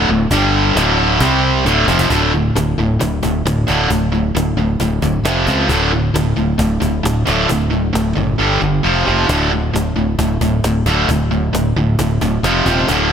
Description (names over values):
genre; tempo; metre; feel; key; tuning
hard rock; 134 BPM; 4/4; straight; D minor; A4 = 440 Hz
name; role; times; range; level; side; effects
sludgy distorted guitar; riff; 0.0-13.1 s; D2 to C4; -15 LUFS; equal; overdrive
modern bright fingered electric bass; bass; 0.0-13.1 s; D1 to C#2; -18 LUFS; equal; none
cajon; drums; 0.3-13.0 s; none; -24 LUFS; equal; none
room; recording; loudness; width
light reverb, small room ambience; bright 1980s-style digital production; -13 LUFS; side -8 dB against mid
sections
0.0-2.1 A section; 2.1-13.1 B section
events
drum fill 1.7-2.1; kick and snare drop out 8.4-9.3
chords
0.3 G5; 0.8 D5; 1.2 C5; 1.7 Dm; 2.1 D5; 5.3 F5; 5.7 D5; 8.4 G5; 8.8 F5; 9.3 D5; 12.4 F5